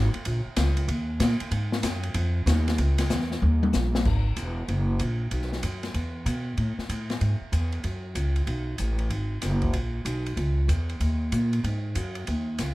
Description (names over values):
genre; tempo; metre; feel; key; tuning
jazz, big band swing; 190 BPM; 4/4; swing 64% on 8ths; G# minor; A4 = 440 Hz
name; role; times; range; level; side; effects
upright bass; bass; 0.0-12.7 s; E1 to B2; -25 LUFS; equal; none
open jazz drum kit; drums; 0.1-12.7 s; crash cymbal, hi-hat, kick drum, ride cymbal, snare drum, toms; -31 LUFS; left 2 dB; none
room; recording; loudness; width
little or no reverb; none; -24 LUFS; side -18 dB against mid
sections
0.0-4.0 A section; 4.0-12.7 B section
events
drum fill 3.4-4.0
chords
none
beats
| 0.26 0.57 0.89 1.20 | 1.52 1.84 2.15 2.47 | 2.78 3.10 3.42 3.73 | 4.05 4.36 4.68 5.00 | 5.31 5.63 5.95 6.26 | 6.58 6.89 7.21 7.53 | 7.84 8.16 8.47 8.79 | 9.11 9.42 9.74 10.06 | 10.37 10.69 11.01 11.32 | 11.64 11.95 12.27 12.59